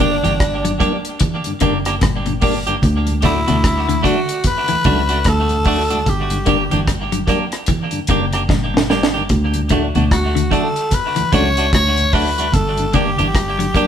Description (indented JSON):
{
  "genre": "roots reggae",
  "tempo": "74 BPM",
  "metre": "4/4",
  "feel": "swing 60% on 16ths",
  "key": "D major",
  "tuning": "A4 = 440 Hz",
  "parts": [
    { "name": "raspy tenor saxophone", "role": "melody", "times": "0.0-13.9 s", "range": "D4 to C#5", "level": "-20 LUFS", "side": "left 1 dB", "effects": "none" },
    { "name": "clean electric guitar", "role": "accompaniment", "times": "0.0-13.9 s", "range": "A3 to G4", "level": "-22 LUFS", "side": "right 3 dB", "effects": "spring reverb, tape echo" },
    { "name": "mellow tonewheel organ", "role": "accompaniment", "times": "0.0-13.9 s", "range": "D2 to D4", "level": "-24 LUFS", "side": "left 1 dB", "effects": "slow rotary speaker" },
    { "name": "clean electric guitar", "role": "arpeggios", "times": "0.0-13.9 s", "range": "A2 to F#3", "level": "-23 LUFS", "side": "left 4 dB", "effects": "none" },
    { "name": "fingered electric bass", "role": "bass", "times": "0.0-13.7 s", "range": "F#1 to D2", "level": "-20 LUFS", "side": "equal", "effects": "none" },
    { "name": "deep reggae drum kit", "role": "drums", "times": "0.0-13.9 s", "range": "hi-hat, kick drum, rim click, snare drum", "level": "-20 LUFS", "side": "equal", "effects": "none" },
    { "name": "congas", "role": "percussion", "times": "0.4-13.9 s", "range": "none", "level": "-27 LUFS", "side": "right 2 dB", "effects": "none" }
  ],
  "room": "moderate studio reverb, RT60 0.7 s",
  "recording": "band playing live in one room",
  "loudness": "-14 LUFS",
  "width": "side -9 dB against mid",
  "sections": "0.0-13.9 A section",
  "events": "drum fill 8.5-9.3",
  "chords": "0.0 Gm; 2.8 D; 6.1 Gm; 9.3 D; 12.5 Gm"
}